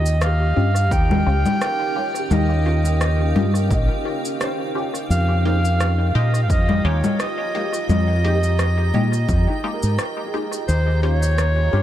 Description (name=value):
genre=ambient dub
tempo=86 BPM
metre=4/4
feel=swing 55% on 16ths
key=unclear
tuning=A4 = 440 Hz
part: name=breathy clarinet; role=melody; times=0.0-11.8 s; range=C5 to G5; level=-25 LUFS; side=right 1 dB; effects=dub echo
part: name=granular cloud pad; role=sustained chords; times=0.0-11.8 s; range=Db4 to Bb5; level=-30 LUFS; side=equal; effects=built-in reverb
part: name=filtered dub chord stab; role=stabs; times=0.0-11.8 s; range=Ab3 to G4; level=-30 LUFS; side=left 2 dB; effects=phaser, dub echo
part: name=fingered electric bass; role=bass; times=0.0-11.8 s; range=Bb1 to Bb2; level=-18 LUFS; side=equal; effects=none
part: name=bubbling stepped-filter texture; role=texture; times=0.0-11.8 s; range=G4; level=-34 LUFS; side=right 5 dB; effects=chorus, built-in reverb
part: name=electronic shaker, rim click and congas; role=drums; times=0.1-11.5 s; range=none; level=-26 LUFS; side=left 2 dB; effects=dub echo
part: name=felt-muted upright piano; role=arpeggios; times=0.3-11.8 s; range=Eb4 to Eb5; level=-34 LUFS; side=right 2 dB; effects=tape echo
part: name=electronic kick drum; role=drums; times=0.9-9.4 s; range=none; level=-21 LUFS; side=equal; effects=overdrive
room=light reverb, digital ambience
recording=none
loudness=-17 LUFS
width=side -12 dB against mid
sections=0.0-11.8 A section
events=none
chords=0.0 Eb9; 5.1 Fm11; 10.7 Eb9